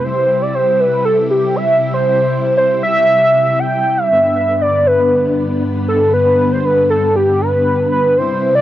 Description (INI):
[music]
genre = pop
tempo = 118 BPM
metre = 4/4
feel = straight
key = G major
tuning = A4 = 440 Hz
[part]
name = warm velvety synth lead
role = melody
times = 0.0-8.6 s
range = G4 to G5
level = -13 LUFS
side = equal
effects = chorus, tape echo
[part]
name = ensemble organ-string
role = sustained chords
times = 0.0-8.6 s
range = G2 to E4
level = -18 LUFS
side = left 1 dB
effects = ensemble chorus
[sound]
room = light reverb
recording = dry, gritty hardware recording, transformer saturation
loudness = -12 LUFS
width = side -13 dB against mid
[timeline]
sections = 0.0-8.6 A section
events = none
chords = 0.0 C; 4.1 G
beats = | 0.04 0.55 1.05 1.56 | 2.07 2.58 3.09 3.60 | 4.10 4.61 5.12 5.63 | 6.14 6.65 7.16 7.66 | 8.17